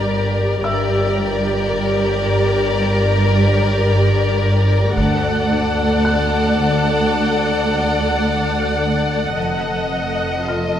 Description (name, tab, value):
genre	cinematic, suspense film score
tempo	55 BPM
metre	4/4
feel	straight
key	unclear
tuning	A4 = 443 Hz
part	warm studio violin section	melody	0.0-10.8 s	D5 to Eb5	-23 LUFS	left 3 dB	none
part	rich studio violin section	second line	0.0-10.8 s	A4 to Bb4	-22 LUFS	left 3 dB	none
part	rich studio viola section	accompaniment	0.0-10.8 s	F4 to F#5	-23 LUFS	right 1 dB	none
part	rich studio cello section	bass	0.0-10.8 s	D2 to G2	-22 LUFS	right 2 dB	none
part	rich studio double bass section	bass	0.0-10.8 s	F1 to D2	-24 LUFS	right 2 dB	none
part	felt-muted upright piano	texture	0.0-10.8 s	E5 to G6	-31 LUFS	equal	none
part	buzzing marimba with medium hard mallets	riff	0.1-10.8 s	F2 to D4	-23 LUFS	left 2 dB	none
part	taiko ensemble	drums	5.0-7.1 s	none	-25 LUFS	equal	none
room	wet concert hall reverb, RT60 2.1 s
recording	none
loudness	-15 LUFS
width	side -10 dB against mid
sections	0.0-10.8 A section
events	none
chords	0.0 Gm; 5.0 D; 9.4 F7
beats	| 0.65 1.73 2.81 3.89 | 4.97 6.06 7.16 8.26 | 9.37 10.49